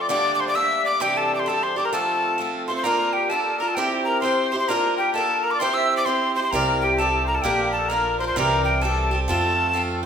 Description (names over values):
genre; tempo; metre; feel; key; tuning
celtic folk, Celtic polka; 130 BPM; 2/4; swing 64% on 8ths; unclear; A4 = 440 Hz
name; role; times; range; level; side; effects
breathy mid whistle; melody; 0.0-9.8 s; G5 to E6; -22 LUFS; equal; none
accordion; second line; 0.0-10.1 s; G4 to E5; -26 LUFS; left 5 dB; light tremolo tuning
picked swing-style acoustic guitar; accompaniment; 0.0-10.1 s; G2 to D5; -25 LUFS; right 3 dB; none
upright bass; bass; 6.5-10.1 s; Bb1 to F2; -27 LUFS; equal; none
room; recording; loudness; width
wet recital hall reverb, RT60 1.3 s; minimal, uncompressed stereo recording; -19 LUFS; side -7 dB against mid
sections
0.0-2.9 A section; 2.9-10.1 B section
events
none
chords
0.1 Gmadd9; 1.0 Cadd9; 1.9 F; 2.9 Bb; 3.8 C; 4.7 Bb; 5.6 C; 6.5 Cadd9; 7.4 Bb; 8.4 C; 9.3 F